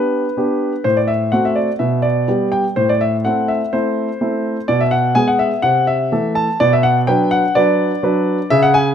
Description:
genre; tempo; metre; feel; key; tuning
classical-period piano sonatina; 125 BPM; 4/4; straight; unclear; A4 = 440 Hz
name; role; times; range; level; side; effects
warm grand piano; solo; 0.0-8.9 s; A2 to A5; -14 LUFS; equal; none
room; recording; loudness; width
light reverb; close, detailed microphones; -14 LUFS; side -8 dB against mid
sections
0.0-8.9 A section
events
none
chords
0.0 G; 0.8 F#dim/A; 1.8 G/B; 2.8 Am; 4.7 Bm6; 5.6 Am/C; 6.6 Bm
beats
0.37 | 0.85 1.32 1.80 2.29 | 2.77 3.25 3.73 4.21 | 4.69 5.16 5.64 6.12 | 6.59 7.07 7.55 8.03 | 8.50

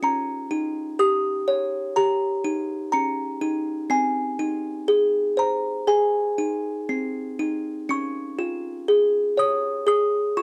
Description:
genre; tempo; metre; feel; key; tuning
children's music, lullaby; 61 BPM; 4/4; rubato; Ab major; A4 = 440 Hz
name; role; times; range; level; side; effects
music box; solo; 0.0-10.4 s; C4 to Eb6; -24 LUFS; equal; cassette tape
room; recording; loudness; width
light reverb; home recording on cassette; -24 LUFS; mono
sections
0.0-7.9 A section; 7.9-10.4 B section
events
none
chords
0.0 Eb7; 3.9 Ab; 7.9 Db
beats
| 0.03 0.99 1.96 2.92 | 3.90 4.88 5.87 6.88 | 7.90 8.89 9.88

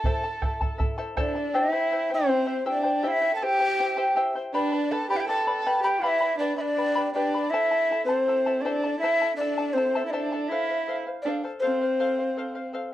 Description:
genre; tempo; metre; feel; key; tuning
andean folk, Andean ensemble; 80 BPM; 4/4; straight; unclear; A4 = 440 Hz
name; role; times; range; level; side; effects
breathy large quena; melody; 0.0-12.7 s; C5 to A5; -25 LUFS; left 1 dB; none
warm violin; second line; 0.0-12.7 s; C4 to A4; -30 LUFS; right 3 dB; none
charango; accompaniment; 0.0-12.9 s; E4 to B5; -29 LUFS; left 1 dB; none
bombo; percussion; 0.0-1.3 s; none; -27 LUFS; right 1 dB; none
room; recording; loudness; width
wet small room reverb, RT60 0.6 s; worn, warbling old tape, cassette tape, warbly pitch drift; -23 LUFS; side -13 dB against mid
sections
0.0-1.5 A section; 1.5-12.9 A section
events
none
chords
0.0 Am; 1.5 C; 4.5 G; 7.5 Am; 10.5 F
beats
0.04 0.79 | 1.54 2.29 3.04 3.79 | 4.54 5.29 6.04 6.79 | 7.53 8.28 9.02 9.77 | 10.51 11.26 12.00 12.74

